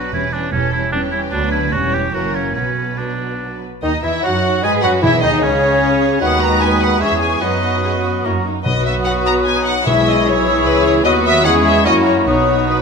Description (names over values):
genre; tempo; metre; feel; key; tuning
quick classical-period movement for symphony orchestra; 150 BPM; 3/4; rubato; B minor, B major from 3.8 s; A4 = 439 Hz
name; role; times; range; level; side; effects
muted studio violin section; melody; 0.0-12.8 s; G4 to A#5; -20 LUFS; left 3 dB; none
muted studio violin section; second line; 0.0-12.8 s; A#3 to C#5; -24 LUFS; left 3 dB; none
warm oboe; second line; 0.0-12.8 s; C#4 to C#5; -23 LUFS; right 2 dB; none
muted studio viola section; accompaniment; 0.0-12.8 s; E3 to G#4; -24 LUFS; right 1 dB; none
muted studio cello section; bass; 0.0-12.8 s; D2 to B4; -25 LUFS; right 4 dB; none
muted studio double bass section; bass; 0.0-12.8 s; E1 to G#2; -23 LUFS; right 4 dB; none
large flute ensemble; second line; 3.8-12.8 s; C#5 to E6; -22 LUFS; left 1 dB; none
mellow clarinet; second line; 3.8-12.8 s; C#4 to G#4; -24 LUFS; left 3 dB; none
mellow bassoon; accompaniment; 3.8-12.8 s; C#3 to G#3; -24 LUFS; right 2 dB; none
dark French horn section; sustained chords; 3.8-12.8 s; C#3 to F#4; -23 LUFS; left 3 dB; none
timpani; percussion; 5.0-5.6, 8.7-10.4 s; B2; -23 LUFS; left 2 dB; none
room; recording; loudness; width
moderate scoring stage reverb, RT60 1.7 s; none; -13 LUFS; side -5 dB against mid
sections
0.0-3.8 A section; 3.8-12.8 A section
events
none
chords
0.1 C#dim/E; 1.3 Bm/D; 1.7 C#dim/E; 2.1 F#7; 2.6 Bm; 3.8 B/D#; 5.0 C#m; 6.2 B/D#; 7.0 C#m/E; 7.4 B/F#; 8.2 F#; 8.7 B; 9.9 C#m/B; 11.1 B/D#; 11.4 C#m/E; 11.8 F#7; 12.3 B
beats
| 0.14 0.53 0.93 | 1.32 1.72 2.13 | 2.55 2.98 3.41 | 3.83 4.24 4.64 | 5.03 5.43 5.82 | 6.21 6.61 7.01 | 7.42 7.83 8.25 | 8.66 9.06 9.47 | 9.87 10.26 10.66 | 11.05 11.45 11.85 | 12.26 12.69